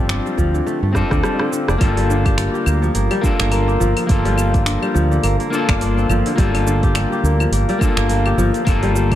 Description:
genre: organic downtempo.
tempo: 105 BPM.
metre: 4/4.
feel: swing 57% on 16ths.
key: G minor.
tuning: A4 = 438 Hz.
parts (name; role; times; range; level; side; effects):
electric guitar at the edge of break-up; accompaniment; 0.0-9.2 s; Bb3 to A4; -21 LUFS; left 3 dB; sidechain pumping, ping-pong delay.
kora; arpeggios; 0.0-9.2 s; D3 to G4; -21 LUFS; equal; ping-pong delay.
mellow fretless electric bass; bass; 0.0-9.2 s; F1 to G2; -18 LUFS; right 1 dB; none.
afro-pop drum kit; drums; 0.1-9.2 s; claves, finger snaps, hi-hat, rim click, shaker; -26 LUFS; equal; none.
electronic kick drum; drums; 0.4-9.2 s; none; -19 LUFS; right 1 dB; none.
udu; percussion; 1.0-1.1 s; none; barely audible; none; none.
room: light reverb.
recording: dark, warm production.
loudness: -15 LUFS.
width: side -12 dB against mid.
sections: 0.0-1.8 A section; 1.8-9.2 B section.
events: drum fill 1.0-1.8.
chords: 0.0 Dm7/G; 1.8 Gm7.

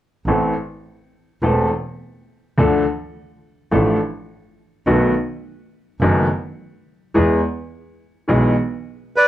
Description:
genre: tango.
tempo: 105 BPM.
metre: 4/4.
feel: rubato.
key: A harmonic minor.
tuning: A4 = 436 Hz.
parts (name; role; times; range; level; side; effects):
clear baby grand piano; accompaniment; 0.3-8.5 s; E1 to A4; -17 LUFS; equal; none.
clear double bass; bass; 0.3-8.5 s; E1 to E2; -23 LUFS; right 1 dB; none.
bandoneon; melody; 9.2-9.3 s; B4 to D5; -10 LUFS; right 1 dB; none.
room: wet small room ambience, RT60 0.5 s.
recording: home recording on cassette.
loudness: -17 LUFS.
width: side -13 dB against mid.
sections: 0.3-9.3 A section.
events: none.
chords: 0.3 Am; 2.6 Dm; 4.9 B7; 7.1 E.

